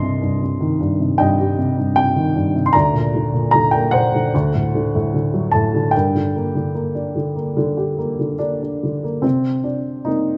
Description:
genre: classical, lyrical solo piano.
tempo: 70-78 BPM.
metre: 4/4.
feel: rubato.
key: G minor.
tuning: A4 = 440 Hz.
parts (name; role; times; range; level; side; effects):
dark upright piano; solo; 0.0-10.4 s; C2 to C6; -19 LUFS; equal; none.
room: light reverb.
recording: none.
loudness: -19 LUFS.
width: mono.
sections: 0.0-9.2 A section; 9.2-10.4 B section.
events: none.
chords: 0.0 Cm; 2.7 Daug7; 4.3 D7; 5.9 Gm; 9.2 Cm7.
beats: 0.41 1.19 1.97 | 2.74 3.53 4.34 5.14 | 5.94 6.75 7.56 8.40 | 9.24 10.06.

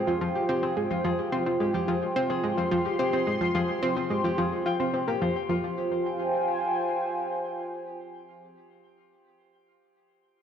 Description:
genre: ambient, sequencer-driven space music.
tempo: 108 BPM.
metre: 4/4.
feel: straight.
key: F minor.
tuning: A4 = 442 Hz.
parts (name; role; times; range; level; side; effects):
sweeping resonant pad; sustained chords; 0.0-8.5 s; F4 to C6; -29 LUFS; right 1 dB; chorus.
concert harp; arpeggios; 0.0-8.0 s; F4 to G5; -33 LUFS; moving between left 6 dB and right 2 dB; auto-pan, ping-pong delay.
analog pluck; riff; 0.0-5.8 s; F3 to F4; -28 LUFS; equal; chorus, ping-pong delay.
room: wet concert hall reverb, RT60 2.4 s.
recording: worn, warbling old tape, cassette tape, warbly pitch drift.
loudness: -25 LUFS.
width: side -8 dB against mid.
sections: 0.0-5.5 A section; 5.5-7.7 B section.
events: none.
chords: 0.0 Fmadd9.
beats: 0.49 | 1.05 1.61 2.16 2.72 | 3.27 3.83 4.38 4.94 | 5.50 6.05 6.61 7.16.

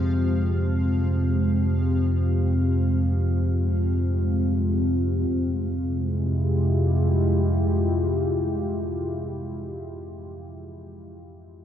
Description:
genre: dark ambient drone.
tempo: free time.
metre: none.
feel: none.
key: F harmonic minor.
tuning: A4 = 440 Hz.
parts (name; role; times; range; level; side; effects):
deep dark ambient pad; sustained chords; 0.0-9.9 s; Ab3 to G4; -26 LUFS; left 1 dB; chorus, built-in reverb.
deep rumbling drone; drone; 0.0-9.8 s; F2 to C3; -24 LUFS; equal; built-in reverb.
bubbling stepped-filter texture; texture; 0.0-5.3 s; F3 to F5; -46 LUFS; right 1 dB; chorus, built-in reverb.
room: wet cathedral reverb, RT60 7.4 s.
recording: dark, warm production, nothing above 7.8 kHz.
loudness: -21 LUFS.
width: side -10 dB against mid.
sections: 0.0-5.3 A section; 5.3-9.2 B section.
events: none.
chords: 0.0 Fmadd9.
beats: free time.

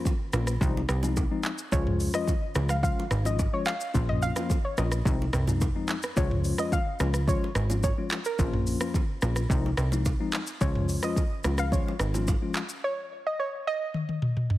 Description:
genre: afrobeats.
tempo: 108 BPM.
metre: 4/4.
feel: straight.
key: Db major.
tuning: A4 = 440 Hz.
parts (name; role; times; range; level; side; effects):
soft round pluck; melody; 0.0-14.5 s; Bb4 to F5; -32 LUFS; equal; chorus, digital delay.
tine electric piano; accompaniment; 0.0-12.6 s; F3 to F4; -32 LUFS; left 4 dB; medium tremolo.
afro-pop drum kit; drums; 0.1-14.6 s; handclaps, hi-hat, kick drum, rim click, shaker, toms; -28 LUFS; equal; none.
bongos and congas; percussion; 0.1-12.7 s; none; -38 LUFS; right 6 dB; none.
plucky analog bass; bass; 0.3-12.4 s; Ab1 to Db2; -27 LUFS; equal; none.
room: light reverb.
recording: heavily compressed radio sound.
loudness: -25 LUFS.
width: side -16 dB against mid.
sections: 0.0-14.6 A section.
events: silent gap 12.8-14.6; drum fill 13.9-14.6.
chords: 0.0 Bbm; 0.6 Fm7/C; 1.7 Db; 3.9 Bbm; 5.1 Fm7/C; 6.2 Db; 8.4 Bbm; 9.5 Fm7/C; 10.6 Db; 12.8 N.C..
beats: 0.06 0.61 1.17 | 1.72 2.28 2.83 3.39 | 3.94 4.50 5.05 5.61 | 6.17 6.72 7.28 7.83 | 8.39 8.94 9.50 10.05 | 10.61 11.17 11.72 12.28 | 12.83 13.39 13.94 14.50.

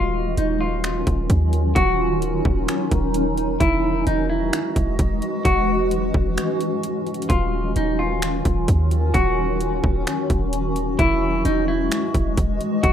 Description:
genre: hip hop, atmospheric cloud-rap.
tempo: 130 BPM.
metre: 4/4.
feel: half-time.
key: Eb phrygian.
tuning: A4 = 443 Hz.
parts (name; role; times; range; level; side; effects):
clean electric guitar; melody; 0.0-12.9 s; Eb4 to Gb4; -24 LUFS; equal; low-pass filter, digital delay.
granular cloud pad; sustained chords; 0.0-12.9 s; Eb3 to D#5; -24 LUFS; left 1 dB; built-in reverb, sidechain pumping.
warm 808-style bass; bass; 0.0-12.9 s; Eb1 to Eb2; -23 LUFS; equal; none.
trap drum kit; drums; 0.4-12.9 s; finger snaps, hi-hat, kick drum; -23 LUFS; equal; none.
room: digital ambience.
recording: rough home demo mix.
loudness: -18 LUFS.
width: side -9 dB against mid.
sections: 0.0-12.9 A section.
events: break 6.4-7.3.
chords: 0.0 Ebm9; 3.6 Emaj9; 7.3 Ebm9; 11.0 Emaj9.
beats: 0.37 0.84 1.30 | 1.76 2.22 2.68 3.14 | 3.60 4.07 4.53 4.99 | 5.45 5.91 6.37 6.84 | 7.30 7.76 8.22 8.68 | 9.14 9.61 10.07 10.53 | 10.99 11.45 11.91 12.37 | 12.84.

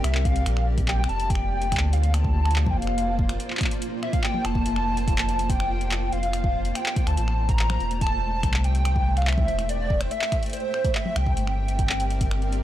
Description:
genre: IDM.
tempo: 143 BPM.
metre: 4/4.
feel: straight.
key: Bb lydian.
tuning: A4 = 440 Hz.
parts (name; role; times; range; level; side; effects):
warbly nostalgic lead; melody; 0.0-12.6 s; C5 to Bb5; -28 LUFS; equal; ensemble chorus, tape echo.
granular cloud pad; sustained chords; 0.0-12.6 s; A3 to G5; -32 LUFS; equal; built-in reverb.
warm sub bass; bass; 0.0-12.6 s; E1 to D2; -24 LUFS; equal; none.
booming analog drum machine; drums; 0.0-12.6 s; finger snaps, handclaps, hi-hat, toms; -30 LUFS; left 1 dB; none.
electronic kick drum; drums; 0.3-12.3 s; none; -26 LUFS; equal; none.
room: digital ambience.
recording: dry, gritty hardware recording.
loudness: -21 LUFS.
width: side -13 dB against mid.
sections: 0.0-12.6 A section.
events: none.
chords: 0.5 Bbmaj7; 7.2 Am7; 10.5 C7.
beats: 0.04 | 0.46 0.88 1.30 1.72 | 2.14 2.56 2.98 3.40 | 3.82 4.24 4.66 5.08 | 5.50 5.92 6.33 6.75 | 7.17 7.59 8.01 8.43 | 8.85 9.27 9.69 10.11 | 10.53 10.95 11.37 11.79 | 12.21 12.63.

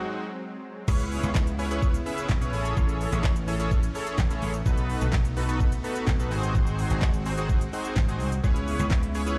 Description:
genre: dance-pop.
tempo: 127 BPM.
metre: 4/4.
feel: straight.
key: C# minor.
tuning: A4 = 444 Hz.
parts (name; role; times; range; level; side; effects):
big bright polysynth; accompaniment; 0.0-9.4 s; G#3 to E5; -34 LUFS; equal; chorus, sidechain pumping.
supersaw pad; sustained chords; 0.0-9.4 s; C#3 to F#4; -39 LUFS; equal; sidechain pumping.
dry thumbed slap bass; bass; 0.9-9.4 s; G#1 to C#2; -31 LUFS; equal; sidechain pumping.
pop drum kit; drums; 0.9-9.4 s; crash cymbal, handclaps, hi-hat, kick drum, shaker, snare drum; -28 LUFS; equal; none.
room: little or no reverb.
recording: played on a big sound system in a bare room, large studio reverb, lossy compression artefacts.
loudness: -26 LUFS.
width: mono.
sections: 0.9-9.4 A section.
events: break 0.0-0.9.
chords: 0.0 G#7; 0.9 C#m7; 2.5 Amaj7; 4.7 B7; 6.3 G#7; 8.4 C#m7.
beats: 0.41 | 0.88 1.35 1.82 2.30 | 2.77 3.24 3.71 4.19 | 4.66 5.13 5.60 6.08 | 6.55 7.02 7.49 7.97 | 8.44 8.91 9.38.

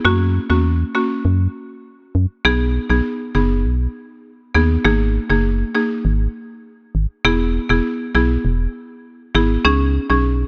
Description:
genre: dancehall.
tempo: 100 BPM.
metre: 4/4.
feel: straight.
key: B major.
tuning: A4 = 439 Hz.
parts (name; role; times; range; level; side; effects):
buzzing marimba with hard mallets; accompaniment; 0.0-10.3 s; A#3 to G#4; -21 LUFS; equal; none.
organ-like FM bass; bass; 0.1-10.4 s; E1 to F#2; -20 LUFS; equal; none.
room: small room reverb.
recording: none.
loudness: -18 LUFS.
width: mono.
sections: 0.0-2.5 A section; 2.5-10.5 B section.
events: none.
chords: 0.1 F#; 2.5 B6; 4.8 G#sus2; 7.2 E; 9.7 C#sus2.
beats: | 0.05 0.65 1.25 1.85 | 2.45 3.05 3.65 4.25 | 4.85 5.45 6.05 6.65 | 7.25 7.85 8.45 9.05 | 9.65 10.25.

